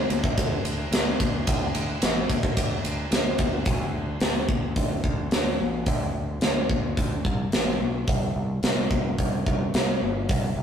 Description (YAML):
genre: hard rock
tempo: 109 BPM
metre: 4/4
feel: straight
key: unclear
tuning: A4 = 440 Hz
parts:
  - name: growling fingered electric bass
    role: bass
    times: 0.0-10.6 s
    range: G1 to D2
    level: -29 LUFS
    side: equal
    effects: overdrive
  - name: tight metal drum kit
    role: drums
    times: 0.1-10.4 s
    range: hi-hat, kick drum, ride cymbal, snare drum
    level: -24 LUFS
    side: equal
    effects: none
room: light reverb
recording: rough rehearsal-room recording, tube saturation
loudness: -22 LUFS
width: side -8 dB against mid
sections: 0.0-3.7 A section; 3.7-10.6 B section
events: none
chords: none